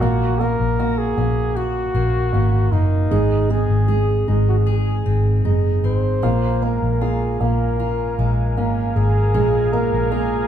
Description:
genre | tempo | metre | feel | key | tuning
pop | 77 BPM | 4/4 | straight | Bb minor | A4 = 440 Hz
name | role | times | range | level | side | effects
breathy flugelhorn | melody | 0.0-10.5 s | Eb4 to C5 | -24 LUFS | left 1 dB | none
warm grand piano | accompaniment | 0.0-10.5 s | Ab3 to Bb3 | -23 LUFS | right 5 dB | none
fingerpicked steel-string acoustic guitar | arpeggios | 0.0-10.5 s | Ab2 to Ab4 | -29 LUFS | left 2 dB | none
vintage muted fingered electric bass | bass | 0.0-10.5 s | Gb1 to Bb1 | -19 LUFS | left 1 dB | none
warm analog pad | sustained chords | 6.2-10.5 s | Bb4 to Bb5 | -30 LUFS | left 3 dB | chorus
room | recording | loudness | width
wet large studio reverb, RT60 1.4 s | band playing live in one room | -16 LUFS | side -9 dB against mid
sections
0.0-10.5 A section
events
none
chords
0.0 Gb; 3.1 Ab; 6.2 Bbm7

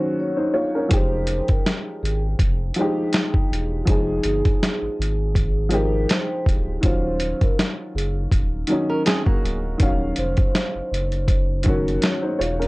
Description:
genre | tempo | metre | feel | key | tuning
lo-fi hip hop | 81 BPM | 4/4 | swing 56% on 16ths | F phrygian | A4 = 440 Hz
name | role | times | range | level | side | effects
vibraphone with soft mallets | melody | 0.0-12.4 s | Ab4 to Db5 | -28 LUFS | equal | low-pass filter
dark upright piano | accompaniment | 0.0-12.7 s | Eb3 to F5 | -24 LUFS | equal | low-pass filter
saturated sub bass | bass | 0.9-12.7 s | D1 to Ab1 | -25 LUFS | equal | tube saturation
lo-fi sampler-style drum kit | drums | 0.9-12.7 s | hi-hat, kick drum, snare drum | -20 LUFS | equal | none
flamenco guitar | second line | 8.9-10.3 s | Bb3 to Bb4 | -27 LUFS | right 2 dB | low-pass filter, analog delay
room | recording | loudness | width
little or no reverb | dry, gritty hardware recording, cassette tape | -19 LUFS | side -22 dB against mid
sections
0.0-12.7 A section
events
break 0.0-0.9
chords
0.0 Ebm9; 0.9 Fm9; 6.8 Ebm9

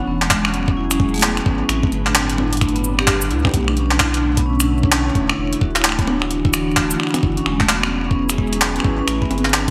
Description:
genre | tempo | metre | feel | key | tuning
IDM | 130 BPM | 4/4 | swing 62% on 16ths | unclear | A4 = 440 Hz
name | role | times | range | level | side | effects
glassy FM pad | sustained chords | 0.0-9.7 s | A2 to F#5 | -29 LUFS | equal | ensemble chorus, built-in reverb
vibraphone with medium hard mallets | arpeggios | 0.0-9.7 s | G#3 to G4 | -24 LUFS | equal | digital delay
warm sub bass | bass | 0.1-9.7 s | D1 to D2 | -26 LUFS | equal | tube saturation
jungle sampler-style drum kit | drums | 0.2-9.7 s | cabasa, finger snaps, handclaps, hi-hat, toms | -22 LUFS | equal | gated reverb, delay
electronic kick drum | drums | 0.3-9.7 s | none | -21 LUFS | equal | none
room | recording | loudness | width
moderate plate reverb, RT60 1.3 s, digital ambience | bright 1980s-style digital production | -18 LUFS | mono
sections
0.0-9.7 A section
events
none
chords
0.0 F#9sus4; 1.7 Am11; 3.5 Bm11; 5.2 Em11; 7.2 F#9sus4; 9.1 Am9

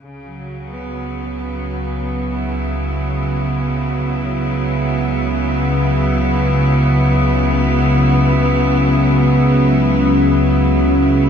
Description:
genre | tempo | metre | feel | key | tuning
dark ambient drone | free time | none | none | unclear | A4 = 440 Hz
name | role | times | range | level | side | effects
bright studio cello section | sustained chords | 0.0-11.3 s | C#3 to E4 | -18 LUFS | equal | none
analog drone | drone | 0.8-11.3 s | C#2 to C#3 | -16 LUFS | equal | chorus
room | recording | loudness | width
wet cathedral reverb, RT60 5.0 s | in a vast, echoing space | -14 LUFS | side -7 dB against mid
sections
0.0-11.3 A section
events
filter sweep on synth drone 0.0-11.3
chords
0.0 C#m

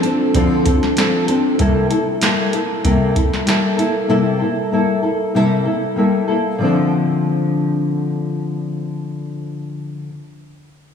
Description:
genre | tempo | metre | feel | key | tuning
indie pop, bedroom pop | 96 BPM | 4/4 | straight | D minor | A4 = 440 Hz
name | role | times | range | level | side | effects
mellow tine electric piano | accompaniment | 0.0-1.6 s | C4 to C5 | -22 LUFS | right 2 dB | medium stereo tremolo, cassette tape
nylon-string guitar | accompaniment | 0.0-10.1 s | C3 to A4 | -16 LUFS | left 2 dB | wide subtle chorus, vibrato effect
soft vintage rhythm box | drums | 0.0-3.9 s | hi-hat, kick drum, snare drum | -20 LUFS | right 1 dB | none
room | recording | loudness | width
wet church reverb, RT60 2.9 s | dreamy mix soaked in reverb, small room ambience | -15 LUFS | side -7 dB against mid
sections
0.0-6.6 A section; 6.6-9.1 B section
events
none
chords
0.0 Dm7; 1.6 C6; 6.6 Dm7

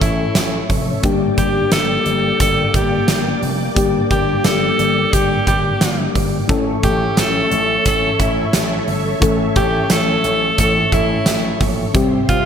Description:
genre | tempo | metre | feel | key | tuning
1980s-style pop | 88 BPM | 4/4 | straight | unclear | A4 = 441 Hz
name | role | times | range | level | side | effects
edgy alto saxophone | melody | 0.0-12.5 s | E4 to A4 | -20 LUFS | equal | none
mellow FM electric piano | accompaniment | 0.0-12.5 s | C3 to A4 | -21 LUFS | left 4 dB | chorus
string machine, violas | sustained chords | 0.0-12.5 s | Bb3 to D6 | -24 LUFS | equal | ensemble chorus
vintage slap bass | bass | 0.0-12.5 s | F1 to C2 | -23 LUFS | equal | none
huge arena drum kit | drums | 0.0-12.4 s | hi-hat, kick drum, snare drum | -19 LUFS | right 1 dB | gated reverb
room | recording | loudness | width
moderate plate reverb, RT60 2.3 s | bright 1980s-style digital production | -14 LUFS | side -8 dB against mid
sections
0.0-12.5 A section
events
none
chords
0.0 A; 1.0 Gm; 6.5 A; 11.9 C

